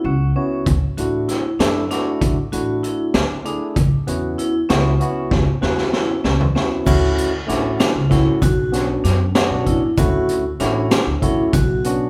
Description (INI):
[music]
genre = progressive instrumental, band music in an uneven meter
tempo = 193 BPM (eighths)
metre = 5/8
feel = straight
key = D major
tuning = A4 = 440 Hz
[part]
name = barky tine electric piano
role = accompaniment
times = 0.0-12.1 s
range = A3 to F#5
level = -25 LUFS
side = equal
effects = none
[part]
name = upright bass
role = bass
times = 0.0-12.1 s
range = A1 to F#2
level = -24 LUFS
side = equal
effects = none
[part]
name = vibraphone with hard mallets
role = arpeggios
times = 0.1-11.9 s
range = C#4 to F#4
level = -26 LUFS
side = equal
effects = none
[part]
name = raw garage drum kit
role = drums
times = 0.7-12.0 s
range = crash cymbal, hi-hat, kick drum, snare drum, toms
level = -22 LUFS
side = equal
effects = none
[part]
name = tube shaker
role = percussion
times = 6.9-11.8 s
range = none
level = -46 LUFS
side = equal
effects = none
[sound]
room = moderate recital hall reverb, RT60 1.4 s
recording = recorded in a church or concert hall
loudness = -18 LUFS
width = mono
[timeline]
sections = 0.0-6.9 A section; 6.9-12.1 B section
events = tine electric piano fill 0.0-0.7; drum fill 5.3-6.9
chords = 0.0 C#madd11; 0.7 Dadd9; 3.8 C#madd11; 6.9 Dmaj7; 8.4 Bmadd9; 10.0 Dmaj7; 11.5 Bmadd9